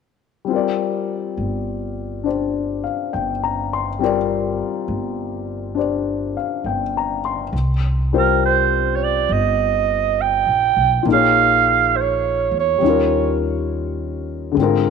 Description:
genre	jazz ballad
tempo	68 BPM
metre	4/4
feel	swing 66% on 8ths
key	unclear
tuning	A4 = 438 Hz
part	warm baby grand piano	accompaniment	0.4-14.9 s	D3 to C6	-21 LUFS	left 9 dB	none
part	upright bass	bass	1.4-14.9 s	G1 to E2	-24 LUFS	equal	none
part	growling clarinet	melody	8.2-13.4 s	Bb4 to G5	-16 LUFS	right 12 dB	none
room	light reverb, studio ambience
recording	1960s-style stereo with parts hard left and right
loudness	-17 LUFS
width	side -6 dB against mid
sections	0.5-7.5 A section; 7.5-14.9 B section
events	none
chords	0.5 G7sus4; 7.5 Cm7; 11.1 Bbm7; 12.8 Eb9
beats	| 0.49 1.38 2.25 3.13 | 4.00 4.88 5.75 6.63 | 7.53 8.41 9.29 10.17 | 11.05 11.93 12.81 13.68 | 14.55

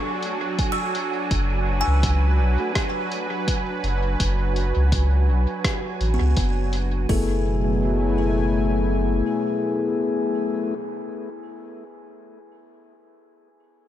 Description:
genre	ambient dub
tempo	83 BPM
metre	4/4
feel	swing 56% on 16ths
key	F# minor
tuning	A4 = 440 Hz
part	warm analog pad	sustained chords	0.0-10.7 s	B2 to G#5	-28 LUFS	right 1 dB	chorus
part	buzzing kalimba	arpeggios	0.0-11.4 s	B3 to E6	-32 LUFS	left 1 dB	tape echo
part	wind-like tuned noise texture	texture	0.0-7.1 s	G#5	-33 LUFS	right 6 dB	built-in reverb
part	lo-fi sampler-style drum kit	drums	0.2-6.9 s	hi-hat, rim click	-31 LUFS	left 1 dB	dub echo
part	deep house drum kit	drums	0.6-7.3 s	hi-hat, kick drum	-25 LUFS	equal	overdrive
part	soft dub sub bass	bass	1.3-9.2 s	F#1 to C#2	-21 LUFS	equal	none
part	mellow tonewheel organ	stabs	2.6-2.7, 7.1-10.7 s	A3 to G#4	-26 LUFS	left 4 dB	slow rotary speaker, dub echo
room	little or no reverb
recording	none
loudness	-20 LUFS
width	side -11 dB against mid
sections	0.0-7.1 A section; 7.1-10.0 B section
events	none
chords	0.0 D/F#; 7.1 F#m11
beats	0.59 | 1.31 2.03 2.75 3.48 | 4.20 4.92 5.65 6.37 | 7.09 7.82 8.54 9.26

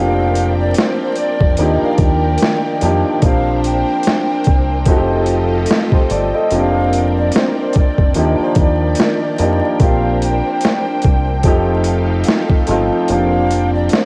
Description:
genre	lo-fi hip hop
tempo	73 BPM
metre	4/4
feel	swing 56% on 16ths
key	Bb major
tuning	A4 = 444 Hz
part	breathy jazz flute	melody	0.0-14.1 s	C5 to G5	-24 LUFS	equal	none
part	warm upright piano	accompaniment	0.0-14.1 s	F3 to Eb5	-20 LUFS	equal	cassette tape
part	string machine, violas	sustained chords	0.0-14.1 s	Eb3 to G5	-26 LUFS	equal	ensemble chorus, cassette tape
part	deep dub fingered electric bass	bass	0.0-13.9 s	F1 to F2	-20 LUFS	equal	none
part	boom bap sampler-style drum kit	drums	0.4-14.1 s	hi-hat, kick drum, snare drum	-18 LUFS	equal	overdrive
room	light reverb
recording	home recording on cassette, vinyl crackle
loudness	-15 LUFS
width	mono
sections	0.0-14.1 A section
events	none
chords	0.0 Bb69/F; 1.6 Ebmaj7; 3.2 Bb69; 4.9 F9; 6.5 Bb69/F; 8.2 Ebmaj7; 9.8 Bb69; 11.4 F9; 13.1 Bb69/F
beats	0.76 1.58 2.40 | 3.23 4.05 4.87 5.69 | 6.51 7.34 8.16 8.98 | 9.80 10.62 11.45 12.27 | 13.09 13.91

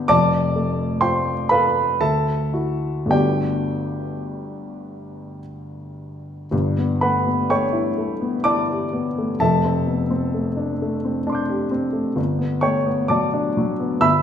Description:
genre	classical, impressionist solo piano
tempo	50-67 BPM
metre	3/4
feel	rubato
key	unclear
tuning	A4 = 441 Hz
part	warm grand piano	solo	0.0-14.2 s	F1 to G6	-19 LUFS	equal	none
room	wet recital hall reverb, RT60 1.5 s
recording	none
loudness	-18 LUFS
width	side -8 dB against mid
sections	0.0-6.5 A section; 6.5-14.2 A section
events	none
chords	0.1 Fadd9; 2.0 Dadd9; 3.1 Gmaj9; 6.5 G69; 9.4 F69; 12.2 Gmaj9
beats	| 0.10 1.02 2.00 | 3.12 4.29 5.42 | 6.52 7.50 8.45 | 9.40 10.34 11.27 | 12.18 13.12 14.04

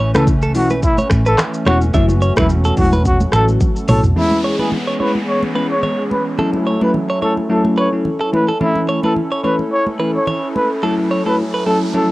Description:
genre	afrobeats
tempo	108 BPM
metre	4/4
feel	swing 55% on 16ths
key	F# minor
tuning	A4 = 439 Hz
part	hollow soft pad	sustained chords	0.0-12.1 s	E3 to A4	-22 LUFS	equal	chorus
part	direct-recorded clean electric guitar	riff	0.0-11.8 s	A4 to E5	-22 LUFS	right 2 dB	none
part	hollow-body short-scale fingered electric bass	bass	0.0-4.1 s	E1 to C#2	-16 LUFS	equal	none
part	bell-like FM electric piano	accompaniment	0.1-12.1 s	E3 to E4	-18 LUFS	left 2 dB	chorus
part	afro-pop drum kit	drums	0.1-4.2, 11.9-12.1 s	finger snaps, handclaps, hi-hat, kick drum, rim click, shaker, toms	-18 LUFS	equal	cassette tape
part	congas	percussion	0.1-10.7 s	none	-25 LUFS	right 1 dB	none
part	breathy trumpet	melody	0.2-12.1 s	E4 to C#5	-20 LUFS	equal	cassette tape
part	downlifter and riser	sound effects	4.2-11.9 s	none	-32 LUFS	equal	none
room	little or no reverb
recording	home recording on cassette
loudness	-13 LUFS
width	side -18 dB against mid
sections	0.0-4.2 A section; 4.2-12.1 B section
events	drum fill 3.6-4.2, 11.9; riser 9.6-12.1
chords	0.0 A; 1.9 F#m7; 4.2 C#m7; 6.4 F#m7; 8.3 A; 10.8 F#m7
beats	0.27 0.83 1.38 | 1.94 2.50 3.05 3.61 | 4.16 4.72 5.27 5.83 | 6.38 6.94 7.50 8.05 | 8.61 9.16 9.72 10.27 | 10.83 11.38 11.94

